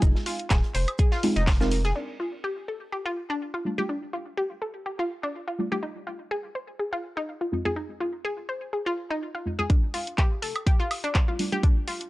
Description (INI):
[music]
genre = deep house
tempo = 124 BPM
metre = 4/4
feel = swing 55% on 16ths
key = unclear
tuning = A4 = 440 Hz
[part]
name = analog pluck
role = arpeggios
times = 0.0-12.0 s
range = D4 to C5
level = -30 LUFS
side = left 1 dB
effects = chorus, sidechain pumping, tape echo
[part]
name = deep mellow chord stab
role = stabs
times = 0.0-11.6 s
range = F2 to Bb4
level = -29 LUFS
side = right 1 dB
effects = chorus, sidechain pumping, tape echo
[part]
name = round analog bass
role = bass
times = 0.0-1.9, 9.7-11.7 s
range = D1 to C2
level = -28 LUFS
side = equal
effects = sidechain pumping, high-pass filter
[part]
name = electronic kick drum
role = drums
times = 0.0-1.6, 9.7-11.7 s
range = none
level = -21 LUFS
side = equal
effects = none
[part]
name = house drum kit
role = drums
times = 0.0-2.1, 9.7-12.1 s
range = crash cymbal, handclaps, hi-hat, woodblock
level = -32 LUFS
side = equal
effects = low-pass filter on hats, low-pass filter on snare, low-pass filter on perc, low-pass filter on cymbals
[part]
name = unplugged drum kit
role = drums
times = 0.0-2.0 s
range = hi-hat, shaker, snare drum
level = -41 LUFS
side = right 1 dB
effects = sidechain pumping on hats, high-pass filter on hats, high-pass filter on snare, sidechain pumping on perc, high-pass filter on perc, high-pass filter on room
[sound]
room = small room ambience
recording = dry, gritty hardware recording, cassette tape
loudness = -25 LUFS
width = side -18 dB against mid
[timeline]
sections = 0.0-2.0 A section; 2.0-9.7 B section; 9.7-12.1 C section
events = filter sweep on synth stab 0.0-2.0, 9.7-12.1; band accent 1.5; build-up 9.7-12.1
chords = 0.0 Ab6; 2.0 F69; 5.8 Ab6; 9.7 F69